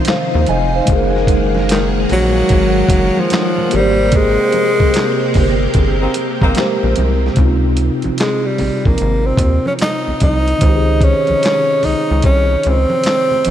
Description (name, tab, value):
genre	R&B, neo-soul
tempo	74 BPM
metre	4/4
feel	swing 64% on 16ths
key	unclear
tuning	A4 = 440 Hz
part	mellow tine electric piano	accompaniment	0.0-13.5 s	C3 to Ab5	-19 LUFS	equal	medium stereo tremolo
part	string machine, violins	sustained chords	0.0-7.3 s	C3 to Gb5	-21 LUFS	equal	ensemble chorus
part	dusty soul sampler-style drum kit	drums	0.0-13.5 s	handclaps, hi-hat, kick drum, snare drum	-18 LUFS	equal	none
part	congas	percussion	0.1-13.5 s	none	-29 LUFS	right 2 dB	none
part	rubbery square bass	bass	0.3-13.5 s	F1 to Eb2	-16 LUFS	equal	none
part	breathy tenor saxophone	melody	1.7-13.5 s	Eb3 to Eb4	-17 LUFS	equal	diffuse ambient delay
part	warm horn section	stabs	6.0-6.7 s	Bb3 to Eb4	-27 LUFS	equal	none
room	moderate huge ambient reverb, RT60 8.4 s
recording	dreamy mix soaked in reverb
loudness	-12 LUFS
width	side -11 dB against mid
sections	0.0-7.4 A section; 7.4-13.5 B section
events	band accent 4.1-7.4; tenor saxophone solo 7.4-13.5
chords	0.0 Dbmaj9; 0.9 Gb69; 3.7 Abmaj9; 7.4 Dbmaj9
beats	0.07 | 0.89 1.70 2.51 3.32 | 4.13 4.94 5.75 6.56 | 7.37 8.18 8.99 9.80 | 10.62 11.43 12.24 13.05